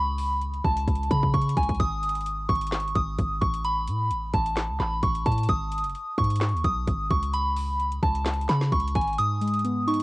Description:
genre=hip hop, trap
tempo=130 BPM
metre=4/4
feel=half-time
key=G# phrygian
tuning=A4 = 440 Hz
part: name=soft synth bell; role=melody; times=0.0-10.0 s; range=G#5 to D#6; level=-26 LUFS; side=equal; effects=chorus
part: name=warm 808-style bass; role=bass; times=0.0-9.2 s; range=F#1 to C#3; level=-27 LUFS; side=equal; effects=none
part: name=trap drum kit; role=drums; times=0.2-10.0 s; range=handclaps, hi-hat, kick drum, snare drum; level=-28 LUFS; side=equal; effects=cassette tape
part: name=muted felt-like synth keys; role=accompaniment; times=9.2-10.0 s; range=G#2 to D#4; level=-24 LUFS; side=equal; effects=chorus, cassette tape
room=little or no reverb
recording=home recording on cassette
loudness=-23 LUFS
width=side -21 dB against mid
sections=0.0-10.0 A section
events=drum fill 0.9-1.8; kick muted 9.2-10.0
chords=0.0 Aadd9/C#; 1.8 G#5; 3.6 N.C.; 5.5 G#m; 7.3 C#5; 9.2 G#m

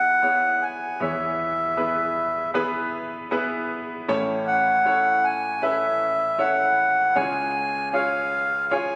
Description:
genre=pop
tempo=78 BPM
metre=4/4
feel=straight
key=unclear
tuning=A4 = 440 Hz
part: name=mellow accordion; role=melody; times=0.0-9.0 s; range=E5 to G#5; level=-23 LUFS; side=equal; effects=tape echo
part: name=bright concert grand piano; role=accompaniment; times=0.0-9.0 s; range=A1 to D5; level=-30 LUFS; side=equal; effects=none
room=moderate lush hall reverb, RT60 2.6 s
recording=recorded on a phone in the room, studio reverb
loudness=-23 LUFS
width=mono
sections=0.0-9.0 A section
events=none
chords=0.0 E; 4.1 A; 7.2 C#

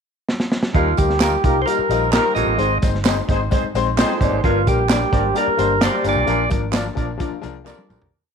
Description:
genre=uptempo 1960s-style soul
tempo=130 BPM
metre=4/4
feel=straight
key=Eb major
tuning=A4 = 440 Hz
part: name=crunchy breakbeat drum kit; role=drums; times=0.3-8.1 s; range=hi-hat, kick drum, snare drum, toms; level=-21 LUFS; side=right 1 dB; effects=none
part: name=clear concert grand piano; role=accompaniment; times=0.7-8.0 s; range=F3 to D5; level=-23 LUFS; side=left 11 dB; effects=none
part: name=breathy baritone saxophone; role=riff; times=0.7-8.1 s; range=D2 to Bb2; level=-27 LUFS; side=right 14 dB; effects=none
part: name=vintage muted fingered electric bass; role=bass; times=0.7-8.1 s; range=G1 to Eb2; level=-23 LUFS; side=right 1 dB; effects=none
part: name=percussive tonewheel organ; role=melody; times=0.8-6.5 s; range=F4 to Eb5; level=-20 LUFS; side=right 3 dB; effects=overdrive, stopped rotary speaker, slapback echo
part: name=tambourine and handclaps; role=percussion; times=1.0-8.0 s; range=none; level=-30 LUFS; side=right 16 dB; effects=none
part: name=warm horn section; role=second line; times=1.2-8.1 s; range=Bb3 to D5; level=-27 LUFS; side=right 1 dB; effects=slapback echo
part: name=electric guitar through a small old amp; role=riff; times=1.4-8.1 s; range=D4 to Eb5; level=-28 LUFS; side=left 14 dB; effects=none
room=light reverb, small room ambience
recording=1960s-style stereo with parts hard left and right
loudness=-16 LUFS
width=side -6 dB against mid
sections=0.0-0.7 pickup bar; 0.7-8.1 verse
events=drum fill 0.3-0.7, 7.7-8.1; fade-out 6.3-8.1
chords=0.0 N.C.; 0.7 Ebadd9; 2.6 Ab; 4.4 Gm; 6.3 Bb

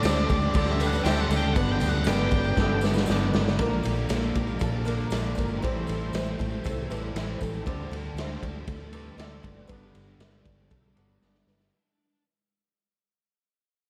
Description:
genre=rock, shoegaze and dream pop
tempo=118 BPM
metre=4/4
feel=straight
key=unclear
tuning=A4 = 440 Hz
part: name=octave-fuzz lead guitar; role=melody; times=0.0-2.8 s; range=D5 to G5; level=-35 LUFS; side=equal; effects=distortion, tape echo
part: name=ensemble organ-string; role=sustained chords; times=0.0-7.6 s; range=A4 to D6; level=-42 LUFS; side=equal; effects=none
part: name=picked twelve-string acoustic guitar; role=arpeggios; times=0.0-12.2 s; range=G4 to D5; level=-39 LUFS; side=equal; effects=ensemble chorus, tape echo
part: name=thick fuzz guitar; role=riff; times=0.0-12.2 s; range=G2 to D4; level=-36 LUFS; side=equal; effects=distortion, ensemble chorus
part: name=twangy electric guitar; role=riff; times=0.0-11.7 s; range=G2 to A4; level=-35 LUFS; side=equal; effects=reverse reverb
part: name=vintage muted fingered electric bass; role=bass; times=0.0-11.7 s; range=F#1 to D2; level=-32 LUFS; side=equal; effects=none
part: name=raw garage drum kit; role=drums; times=0.0-11.7 s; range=crash cymbal, kick drum, ride cymbal, snare drum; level=-31 LUFS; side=equal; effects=none
part: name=tambourine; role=percussion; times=0.0-7.6 s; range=none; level=-51 LUFS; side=equal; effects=none
room=light reverb, small room ambience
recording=none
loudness=-26 LUFS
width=mono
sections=0.0-3.6 A section; 3.6-11.7 B section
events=drum fill 2.6-3.6, 11.2-11.7; fade-out 3.6-11.7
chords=0.0 D7sus4; 1.6 G; 3.6 Bb; 5.6 Am7; 7.7 D7sus4; 9.7 G

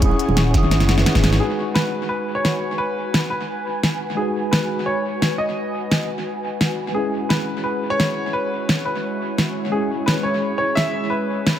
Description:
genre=liquid drum and bass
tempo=173 BPM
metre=4/4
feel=straight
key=unclear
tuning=A4 = 439 Hz
part: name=mellow tine electric piano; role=accompaniment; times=0.0-11.6 s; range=G#3 to B4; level=-26 LUFS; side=equal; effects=medium stereo tremolo, analog delay
part: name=ethereal airy pad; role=sustained chords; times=0.0-11.6 s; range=G#3 to C#6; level=-28 LUFS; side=left 1 dB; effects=ensemble chorus, built-in reverb, vintage 12-bit sampler grit
part: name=dark detuned saw bass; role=bass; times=0.0-1.4 s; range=D#1 to G#1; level=-19 LUFS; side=equal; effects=none
part: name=electronic kick drum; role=drums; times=0.0-1.2 s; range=none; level=-19 LUFS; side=equal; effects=studio reverb
part: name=pop drum kit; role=drums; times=0.0-11.5 s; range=hi-hat, snare drum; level=-21 LUFS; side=equal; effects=studio reverb, dub echo
part: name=congas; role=percussion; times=0.1-0.7 s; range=none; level=-28 LUFS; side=equal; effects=none
part: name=warm baby grand piano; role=melody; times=1.4-11.6 s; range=G#4 to E5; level=-24 LUFS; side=left 1 dB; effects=dub echo
room=moderate spring reverb, RT60 2.6 s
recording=echo-heavy mix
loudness=-18 LUFS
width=side -10 dB against mid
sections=0.0-1.4 A section; 1.4-11.6 B section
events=drum fill 0.7-1.4; band accent 1.3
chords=0.0 E69; 1.4 G#m7; 7.0 E69/G#

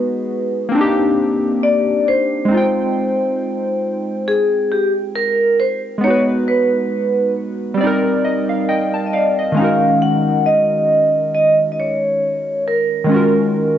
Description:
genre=hip hop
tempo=68 BPM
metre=4/4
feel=swing 56% on 16ths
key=unclear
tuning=A4 = 441 Hz
part: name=vibraphone with medium hard mallets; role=melody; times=0.0-13.8 s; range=G4 to Gb5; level=-16 LUFS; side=equal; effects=low-pass filter, plate reverb
part: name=warm analog keys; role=accompaniment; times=0.0-13.8 s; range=Eb3 to A5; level=-18 LUFS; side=equal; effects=chorus, cassette tape, low-pass filter, plate reverb
room=wet small room reverb, RT60 0.5 s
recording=cassette tape, nothing above 7.8 kHz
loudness=-14 LUFS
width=side -10 dB against mid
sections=0.0-9.6 A section; 9.6-13.8 B section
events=synth keys fill 7.8-9.6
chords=0.0 Abm7; 0.7 Cm9; 2.5 Fm9; 6.0 Abm7; 7.8 Cm9; 9.6 Ebm11

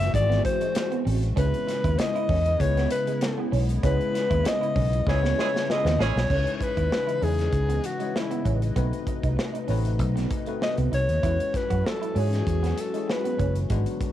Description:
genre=polished 1980s jazz-funk pop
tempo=97 BPM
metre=4/4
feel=swing 54% on 16ths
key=C# minor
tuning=A4 = 440 Hz
part: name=breathy alto saxophone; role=melody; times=0.0-13.6 s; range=E4 to E5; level=-27 LUFS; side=left 2 dB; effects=cassette tape, plate reverb
part: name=barky tine electric piano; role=accompaniment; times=0.0-14.1 s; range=G#3 to D#5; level=-33 LUFS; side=left 11 dB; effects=wide subtle chorus, cassette tape
part: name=hollow soft pad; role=sustained chords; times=0.0-14.1 s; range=C3 to D#5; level=-35 LUFS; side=right 1 dB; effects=ensemble chorus, cassette tape
part: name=vintage muted fingered electric bass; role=bass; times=0.0-13.8 s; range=F#1 to G#2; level=-24 LUFS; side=equal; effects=none
part: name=modern studio drum kit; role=drums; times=0.0-14.1 s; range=crash cymbal, hi-hat, kick drum, snare drum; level=-30 LUFS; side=equal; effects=cassette tape
part: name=electric guitar at the edge of break-up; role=riff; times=0.3-14.0 s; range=G#3 to F#4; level=-34 LUFS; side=right 11 dB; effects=lush chorus, cassette tape
part: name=clear horn section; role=second line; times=5.1-6.2 s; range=G#3 to G#4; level=-34 LUFS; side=right 10 dB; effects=cassette tape, plate reverb, tape echo
room=moderate small room reverb, RT60 0.5 s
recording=home recording on cassette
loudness=-22 LUFS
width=side -12 dB against mid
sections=0.0-6.3 A section; 6.3-14.1 B section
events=band accent 3.8-6.3; drum fill 5.1-6.3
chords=0.0 G#7alt; 1.4 C#m9; 8.8 B7b9; 11.2 E69

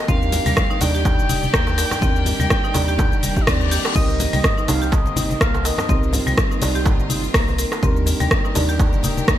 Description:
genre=afro house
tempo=124 BPM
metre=4/4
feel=swing 56% on 16ths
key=unclear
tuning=A4 = 439 Hz
part: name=expressive synth lead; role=melody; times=0.0-6.1 s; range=D5 to G5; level=-26 LUFS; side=left 1 dB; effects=wide subtle chorus, ping-pong delay
part: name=clear symphonic string section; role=sustained chords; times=0.0-9.4 s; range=Eb3 to D5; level=-30 LUFS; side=left 1 dB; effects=sidechain pumping
part: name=felt-muted upright piano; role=stabs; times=0.0-9.4 s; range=G3 to Eb5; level=-27 LUFS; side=right 3 dB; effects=analog chorus, sidechain pumping, ping-pong delay
part: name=buzzing marimba with hard mallets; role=arpeggios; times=0.1-9.4 s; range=G3 to Bb4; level=-27 LUFS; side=equal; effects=sidechain pumping, ping-pong delay
part: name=warm sub bass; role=bass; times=0.1-9.4 s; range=Eb1 to Eb2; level=-23 LUFS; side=equal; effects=sidechain pumping
part: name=electronic kick drum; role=drums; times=0.1-9.4 s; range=none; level=-20 LUFS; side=equal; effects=studio ambience
part: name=house drum kit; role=drums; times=0.1-9.4 s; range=crash cymbal, hi-hat, rim click, shaker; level=-23 LUFS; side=equal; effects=studio ambience, gated reverb
part: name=congas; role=percussion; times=0.1-9.3 s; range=none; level=-26 LUFS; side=left 2 dB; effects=none
part: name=darbuka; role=percussion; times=0.8-8.9 s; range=none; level=-31 LUFS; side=right 5 dB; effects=none
part: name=reverse cymbal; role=sound effects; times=3.2-4.0 s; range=none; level=-28 LUFS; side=left 9 dB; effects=none
room=little or no reverb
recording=bright 1980s-style digital production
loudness=-16 LUFS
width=side -12 dB against mid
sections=0.0-9.4 A section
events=reverse cymbal 3.2-4.0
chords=0.1 Ebmaj7; 4.0 Cm7; 7.8 Ebmaj7

